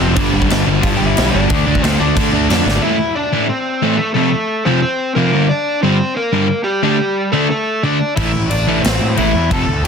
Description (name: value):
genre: punk rock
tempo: 180 BPM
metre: 4/4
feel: straight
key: unclear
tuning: A4 = 439 Hz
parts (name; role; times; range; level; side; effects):
- overdriven semi-hollow guitar; melody; 0.0-9.9 s; G3 to A5; -18 LUFS; left 1 dB; tape echo
- crunchy overdriven guitar; riff; 0.0-9.6 s; F2 to D4; -18 LUFS; right 11 dB; none
- sludgy distorted guitar; riff; 0.0-9.6 s; F2 to D4; -18 LUFS; left 11 dB; overdrive
- fuzz picked electric bass; bass; 0.0-2.8, 8.2-9.9 s; F1 to D3; -19 LUFS; equal; overdrive
- big rock drum kit; drums; 0.2-2.7, 8.2-9.9 s; crash cymbal, kick drum, snare drum; -19 LUFS; equal; none
room: light reverb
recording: dense, heavily limited modern master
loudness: -13 LUFS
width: side -6 dB against mid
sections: 0.0-2.8 A section; 2.8-9.9 B section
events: drum fill 2.7; half time 2.8-9.9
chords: 0.2 G5; 1.5 D5; 2.8 Am; 4.2 F; 5.3 Gm; 6.8 D5; 8.2 Am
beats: | 0.16 0.49 0.82 1.16 | 1.49 1.82 2.16 2.49 | 2.82 3.16 3.49 3.82 | 4.16 4.49 4.83 5.16 | 5.50 5.83 6.16 6.50 | 6.83 7.17 7.50 7.83 | 8.17 8.50 8.84 9.17 | 9.51 9.84